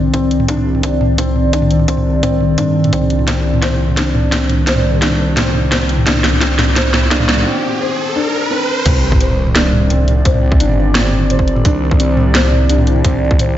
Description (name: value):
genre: half-time drum and bass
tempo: 172 BPM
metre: 4/4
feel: half-time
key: C minor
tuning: A4 = 443 Hz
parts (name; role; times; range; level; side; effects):
- dark analog pad; sustained chords; 0.0-13.6 s; Eb3 to D5; -19 LUFS; equal; chorus, phaser, vintage 12-bit sampler grit, sidechain pumping
- felt-muted upright piano; arpeggios; 0.0-13.6 s; C4 to C5; -20 LUFS; left 2 dB; wide subtle chorus, low-pass filter, tape echo
- phased detuned saw bass; bass; 0.0-13.6 s; G1 to G2; -16 LUFS; equal; phaser
- drum and bass drum kit; drums; 0.1-13.5 s; crash cymbal, hi-hat, snare drum, toms; -17 LUFS; right 1 dB; overdrive
- electronic kick drum; drums; 0.1-13.4 s; none; -15 LUFS; equal; overdrive, high-pass filter on kick
- riser and sub drop; sound effects; 5.8-10.3 s; none; -21 LUFS; right 1 dB; none
room: moderate lush hall reverb, RT60 2.2 s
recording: dreamy mix soaked in reverb, nothing above 7.7 kHz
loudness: -11 LUFS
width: side -12 dB against mid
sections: 0.0-8.9 A section; 8.9-13.6 B section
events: build-up 0.0-8.9; drum fill 3.3-7.5; riser 5.8-8.9; break 7.5-8.9; drop 8.9-13.6; impact 8.9-10.3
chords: 0.0 Cmadd9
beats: 0.14 | 0.49 0.83 1.18 1.53 | 1.88 2.23 2.58 2.93 | 3.28 3.62 3.97 4.32 | 4.67 5.02 5.37 5.72 | 6.07 6.42 6.76 7.11 | 7.46 7.81 8.16 8.51 | 8.86 9.21 9.56 9.90 | 10.25 10.60 10.95 11.30 | 11.65 12.00 12.35 12.70 | 13.04 13.39